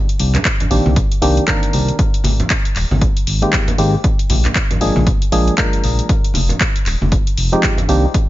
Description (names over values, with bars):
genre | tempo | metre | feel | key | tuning
deep house | 117 BPM | 4/4 | swing 59% on 16ths | F dorian | A4 = 438 Hz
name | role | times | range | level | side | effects
house drum kit | drums | 0.1-8.3 s | handclaps, hi-hat | -21 LUFS | left 1 dB | none
smooth synth bass | bass | 0.2-8.1 s | Eb1 to C2 | -16 LUFS | equal | sidechain pumping
congas | percussion | 0.3-7.9 s | none | -22 LUFS | equal | none
electronic kick drum | drums | 0.5-8.3 s | none | -17 LUFS | equal | none
percussive organ stab | stabs | 0.7-8.1 s | Eb3 to Bb4 | -19 LUFS | equal | chorus, sidechain pumping, ping-pong delay
room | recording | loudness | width
digital ambience | nothing above 7.5 kHz | -13 LUFS | side -16 dB against mid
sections
0.0-8.3 A section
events
none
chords
0.0 Cm9; 2.0 Abmaj9; 4.0 Bb7; 6.1 Fm9